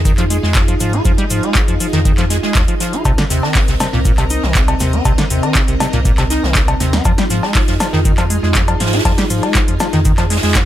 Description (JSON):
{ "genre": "acid house", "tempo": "120 BPM", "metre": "4/4", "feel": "straight", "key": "unclear", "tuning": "A4 = 440 Hz", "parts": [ { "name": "string machine, full ensemble", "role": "sustained chords", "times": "0.0-10.7 s", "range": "C4 to Eb5", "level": "-22 LUFS", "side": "equal", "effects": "ensemble chorus, sidechain pumping" }, { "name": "warm sub bass", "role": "bass", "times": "0.0-10.7 s", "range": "C2 to Ab2", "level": "-18 LUFS", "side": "equal", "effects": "sidechain pumping" }, { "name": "acid bass, square", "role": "riff", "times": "0.1-10.6 s", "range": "Bb2 to F4", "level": "-19 LUFS", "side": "equal", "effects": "lush chorus, cassette tape, digital delay" }, { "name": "electro analog drum machine", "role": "drums", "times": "0.1-10.7 s", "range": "cowbell, handclaps, hi-hat, snare drum", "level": "-19 LUFS", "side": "left 1 dB", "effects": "overdrive" }, { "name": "electronic kick drum", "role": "drums", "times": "0.1-10.7 s", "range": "none", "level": "-16 LUFS", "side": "equal", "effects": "overdrive" }, { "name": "jazz brush drum kit", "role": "drums", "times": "0.1-10.7 s", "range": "hi-hat, shaker, snare drum", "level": "-26 LUFS", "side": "right 2 dB", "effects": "sidechain pumping on hats, high-pass filter on hats, high-pass filter on snare, sidechain pumping on perc, high-pass filter on perc, high-pass filter on room" } ], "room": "light reverb", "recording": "none", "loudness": "-12 LUFS", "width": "side -12 dB against mid", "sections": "0.0-10.7 A section", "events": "none", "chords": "0.0 Fm7; 3.1 Cm7; 7.1 Fm7" }